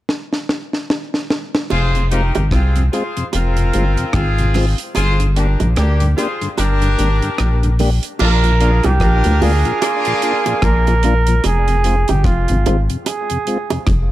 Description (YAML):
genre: roots reggae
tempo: 74 BPM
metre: 4/4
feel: swing 59% on 16ths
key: F dorian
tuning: A4 = 440 Hz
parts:
  - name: deep reggae drum kit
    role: drums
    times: 0.1-14.1 s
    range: crash cymbal, hi-hat, kick drum, rim click, snare drum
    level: -21 LUFS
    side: equal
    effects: none
  - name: warm horn section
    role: second line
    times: 1.7-11.0 s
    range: Bb3 to C5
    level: -21 LUFS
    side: left 2 dB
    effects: tape echo
  - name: rubbery square bass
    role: bass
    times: 1.7-14.1 s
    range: F1 to D2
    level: -15 LUFS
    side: equal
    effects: none
  - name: bongos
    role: percussion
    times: 1.7-13.9 s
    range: none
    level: -24 LUFS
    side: right 6 dB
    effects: none
  - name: tonewheel organ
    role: accompaniment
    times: 2.0-13.8 s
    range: F2 to G4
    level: -24 LUFS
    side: left 2 dB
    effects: chorus vibrato, slow rotary speaker, dub echo
  - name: breathy flugelhorn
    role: melody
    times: 8.2-13.8 s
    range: F4 to Bb4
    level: -19 LUFS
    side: right 4 dB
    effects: tape echo
room: small room reverb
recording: none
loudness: -14 LUFS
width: side -15 dB against mid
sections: 0.0-1.7 A section; 1.7-8.2 B section; 8.2-14.1 C section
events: drum fill 0.1-1.7; kick muted 5.0-8.2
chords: 0.0 N.C.; 1.7 Fm; 5.0 Gm; 8.2 Bb; 11.4 Fm